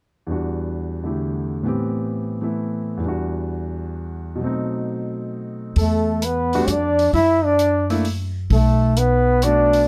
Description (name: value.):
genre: jazz, small-group swing and bop.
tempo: 131 BPM.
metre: 3/4.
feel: swing 68% on 8ths.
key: E minor.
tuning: A4 = 439 Hz.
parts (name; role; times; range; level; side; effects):
warm concert grand piano; accompaniment; 0.3-9.9 s; E2 to G4; -26 LUFS; equal; none.
warm trombone; melody; 5.8-9.9 s; A3 to E4; -20 LUFS; equal; none.
dark trumpet; second line; 5.8-9.9 s; A4 to E5; -28 LUFS; equal; none.
upright bass; bass; 5.8-9.8 s; B1 to F#2; -23 LUFS; equal; none.
compact cocktail drum kit; drums; 5.8-9.8 s; hi-hat, kick drum; -31 LUFS; equal; none.
room: light reverb.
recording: dark, warm production.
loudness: -21 LUFS.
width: mono.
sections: 0.3-5.8 A section; 5.8-9.9 B section.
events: none.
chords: 0.3 Em9; 1.7 Am9; 3.0 Em9; 4.4 B7b9; 5.8 E7sus4; 7.1 F#7(#5, no3); 8.5 Bm7.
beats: | 0.28 0.74 1.20 | 1.65 2.11 2.57 | 3.03 3.48 3.94 | 4.40 4.85 5.31 | 5.77 6.22 6.68 | 7.14 7.59 8.05 | 8.51 8.97 9.42.